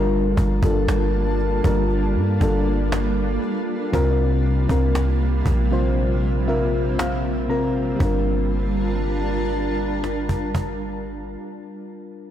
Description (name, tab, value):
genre	contemporary R&B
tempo	59 BPM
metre	4/4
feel	straight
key	G minor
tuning	A4 = 444 Hz
part	mellow FM electric piano	accompaniment	0.0-12.3 s	C3 to Bb5	-24 LUFS	left 2 dB	chorus
part	granular cloud pad	sustained chords	0.0-11.4 s	C3 to A5	-26 LUFS	right 1 dB	built-in reverb
part	warm 808-style bass	bass	0.0-11.4 s	G1 to G2	-22 LUFS	right 1 dB	none
part	cajon	drums	0.4-10.8 s	none	-28 LUFS	equal	none
room	light reverb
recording	blown-out, overdriven recording, overdrive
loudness	-19 LUFS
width	side -10 dB against mid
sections	0.0-8.0 A section; 8.0-12.1 B section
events	FM electric piano fill 6.0-8.0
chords	0.0 Gm7; 3.9 C7sus4; 8.0 Gm7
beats	0.88 1.90 2.92 | 3.94 4.95 5.97 6.99 | 8.00 9.02 10.04 11.05